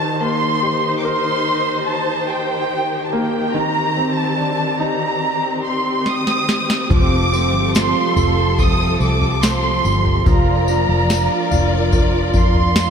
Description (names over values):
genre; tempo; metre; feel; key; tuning
pop ballad; 72 BPM; 4/4; straight; Bb major; A4 = 440 Hz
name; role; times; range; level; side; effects
dark studio violin section; melody; 0.0-12.9 s; G5 to Eb6; -20 LUFS; right 2 dB; tape echo
warm concert grand piano; accompaniment; 0.0-12.9 s; Eb3 to F5; -24 LUFS; equal; none
warm symphonic string section; sustained chords; 0.0-12.9 s; Eb3 to D5; -22 LUFS; left 2 dB; none
booming analog drum machine; drums; 6.1-12.9 s; kick drum, snare drum, toms; -19 LUFS; equal; overdrive
picked steel-string acoustic guitar; arpeggios; 6.9-12.9 s; F2 to F4; -24 LUFS; right 6 dB; wide subtle chorus, tape echo
vintage muted fingered electric bass; bass; 6.9-12.9 s; F1 to F2; -19 LUFS; equal; none
tambourine; percussion; 7.3-12.9 s; none; -33 LUFS; left 12 dB; none
room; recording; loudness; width
moderate lush hall reverb, RT60 2.5 s; dreamy mix soaked in reverb; -15 LUFS; side -7 dB against mid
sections
0.0-12.9 A section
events
drum fill 6.1-6.9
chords
0.0 Eb6; 3.5 Cmadd9/Eb; 6.9 Fadd9; 10.3 Bb/F